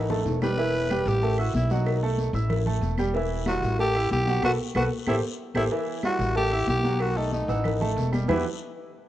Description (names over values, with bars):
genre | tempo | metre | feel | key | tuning
latin, salsa | 187 BPM | 4/4 | straight | unclear | A4 = 439 Hz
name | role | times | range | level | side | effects
growling tenor saxophone | melody | 0.0-8.4 s | D#4 to B4 | -28 LUFS | left 1 dB | none
warm upright piano | accompaniment | 0.0-8.4 s | E3 to E6 | -29 LUFS | right 4 dB | none
upright bass | bass | 0.0-8.4 s | E1 to E2 | -27 LUFS | equal | none
bongos and cowbell | percussion | 0.1-8.4 s | none | -33 LUFS | left 4 dB | none
congas | percussion | 0.1-8.4 s | none | -33 LUFS | left 1 dB | none
guiro | percussion | 0.3-8.4 s | none | -46 LUFS | left 9 dB | none
claves | percussion | 0.4-8.4 s | none | -41 LUFS | right 7 dB | none
room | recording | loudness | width
light reverb | worn, warbling old tape, cassette tape, warbly pitch drift, nothing above 10.6 kHz | -23 LUFS | side -13 dB against mid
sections
0.0-5.7 A section; 5.7-8.3 B section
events
drum fill 0.1-0.6, 4.9-5.7; band accent 4.4-5.7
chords
0.0 A5; 3.1 Emadd9; 3.8 A5; 4.4 B5; 5.1 Am7; 5.7 Emadd9; 6.4 A5; 8.3 Emadd9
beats
0.26 | 0.58 0.90 1.22 1.54 | 1.86 2.18 2.50 2.83 | 3.15 3.47 3.79 4.11 | 4.43 4.75 5.07 5.39 | 5.72 6.04 6.36 6.68 | 7.00 7.32 7.65 7.97 | 8.29